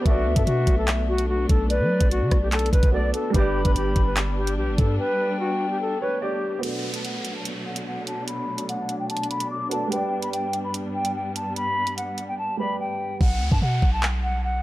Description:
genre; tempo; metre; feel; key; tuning
hip hop, drill; 146 BPM; 4/4; half-time; B minor; A4 = 440 Hz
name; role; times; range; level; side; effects
hollow concert flute; melody; 0.0-14.6 s; F#4 to D6; -27 LUFS; left 1 dB; low-pass filter
dark grand piano; accompaniment; 0.0-13.2 s; G3 to D5; -31 LUFS; right 4 dB; low-pass filter
dark symphonic string section; sustained chords; 0.0-13.2 s; G2 to D4; -31 LUFS; equal; low-pass filter
hollow clarinet-like synth lead; second line; 0.1-6.2 s; D5 to B5; -31 LUFS; left 4 dB; chorus, digital delay
long sustained 808-style bass; bass; 0.1-5.0, 13.2-14.6 s; F#1 to F#3; -24 LUFS; equal; none
drill drum kit; drums; 0.1-14.1 s; handclaps, hi-hat, kick drum, rim click; -22 LUFS; equal; none
downlifter; sound effects; 6.6-9.9, 13.2-14.6 s; none; -35 LUFS; equal; none
room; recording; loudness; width
light reverb, studio ambience; none; -21 LUFS; side -16 dB against mid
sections
0.0-6.6 A section; 6.6-13.2 B section; 13.2-14.6 C section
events
break 5.0-6.6; filter sweep 6.6-13.2; hi-hats muted 13.2-14.6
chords
0.1 Bm7; 3.3 G; 6.6 Bm7; 9.9 G; 13.2 B5

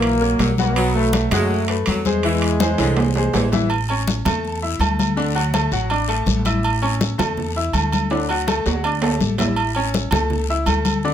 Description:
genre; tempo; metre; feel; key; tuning
latin, salsa; 164 BPM; 4/4; straight; A major; A4 = 442 Hz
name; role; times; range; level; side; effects
brilliant trombone section; melody; 0.0-3.3 s; E3 to B3; -21 LUFS; equal; none
bright saxophone section; second line; 0.0-3.5 s; D3 to G#3; -25 LUFS; right 1 dB; none
bright grand piano; accompaniment; 0.0-11.1 s; D3 to E6; -24 LUFS; left 3 dB; none
upright bass; bass; 0.0-11.1 s; A1 to F#2; -22 LUFS; right 1 dB; none
congas; percussion; 0.0-11.1 s; none; -23 LUFS; left 3 dB; none
guiro; percussion; 0.0-11.1 s; none; -32 LUFS; left 7 dB; none
timbales and agogo bells; percussion; 0.0-11.0 s; none; -24 LUFS; right 6 dB; none
room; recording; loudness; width
moderate studio reverb, RT60 0.5 s; none; -17 LUFS; side -10 dB against mid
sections
0.0-3.7 A section; 3.7-11.1 B section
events
drum fill 2.6-3.7, 8.1-9.6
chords
0.0 F#; 0.8 B5; 2.2 Eaug7; 3.7 A; 5.2 D; 6.6 A; 8.1 D; 9.6 A

